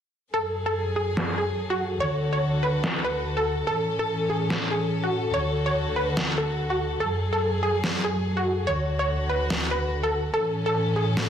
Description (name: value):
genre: heavy wobble dubstep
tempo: 144 BPM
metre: 4/4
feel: swing 55% on 16ths, half-time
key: F# minor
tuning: A4 = 442 Hz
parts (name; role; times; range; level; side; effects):
- wide unison pluck; melody; 0.3-11.2 s; F#4 to C#5; -26 LUFS; equal; vintage 12-bit sampler grit, tape echo
- dark chamber string section; sustained chords; 0.3-11.3 s; D2 to A4; -26 LUFS; equal; none
- electronic snare drum; drums; 1.2-11.3 s; none; -27 LUFS; equal; overdrive, low-pass filter on snare, low-pass filter on room
room: moderate plate reverb, RT60 1.4 s, digital ambience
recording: dense, heavily limited modern master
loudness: -23 LUFS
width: side -8 dB against mid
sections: 0.3-11.3 A section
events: filter sweep on drum 0.3-11.3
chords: 0.3 F#madd9; 2.0 D; 3.7 A; 5.3 D; 7.0 F#madd9; 8.7 D; 10.3 A